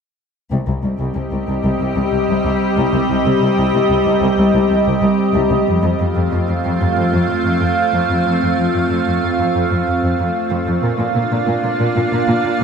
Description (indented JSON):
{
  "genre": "cinematic",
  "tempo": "93 BPM",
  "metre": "4/4",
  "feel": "straight",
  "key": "C dorian",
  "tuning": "A4 = 441 Hz",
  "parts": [
    { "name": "evolving wavetable pad", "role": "sustained chords", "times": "1.0-12.6 s", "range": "G3 to F5", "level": "-16 LUFS", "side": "right 1 dB", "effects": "chorus, built-in reverb" },
    { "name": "warm symphonic cello section", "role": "bass", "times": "0.5-12.6 s", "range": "C2 to Bb2", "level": "-18 LUFS", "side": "left 1 dB", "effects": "none" }
  ],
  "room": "wet scoring stage reverb, RT60 1.6 s",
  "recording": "none",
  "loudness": "-14 LUFS",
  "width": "side -6 dB against mid",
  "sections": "0.5-12.6 A section",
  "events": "none",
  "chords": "0.5 Cm; 5.7 F; 10.8 Bb"
}